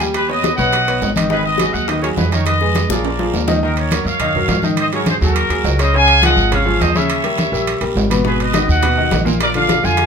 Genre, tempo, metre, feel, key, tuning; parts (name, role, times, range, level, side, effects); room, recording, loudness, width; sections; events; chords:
latin, salsa; 208 BPM; 4/4; straight; Eb minor; A4 = 440 Hz
bright baby grand piano; accompaniment; 0.0-10.1 s; Bb2 to G5; -20 LUFS; left 1 dB
upright bass; bass; 0.0-10.1 s; Ab1 to Ab2; -19 LUFS; equal
bongos; percussion; 0.0-3.5, 8.2-10.1 s; -26 LUFS; left 5 dB
guiro; percussion; 0.0-10.1 s; -29 LUFS; right 6 dB
timbales; percussion; 0.0-10.1 s; -25 LUFS; right 6 dB
congas; percussion; 0.1-10.1 s; -24 LUFS; left 1 dB
warm trumpet section; melody; 0.2-10.1 s; Gb4 to Ab5; -17 LUFS; equal
moderate large studio reverb, RT60 1.2 s; minimal, uncompressed stereo recording; -13 LUFS; side -6 dB against mid
0.0-3.6 A section; 3.6-10.1 A section
drum fill 2.5-3.6
0.2 Eb7alt; 1.3 Abm7; 2.5 Fm7b5; 3.0 Bb7; 3.6 Ebm9; 4.8 Ab9; 5.9 Dbadd9; 7.1 Eb7b9; 8.3 Abm9; 9.4 Bb7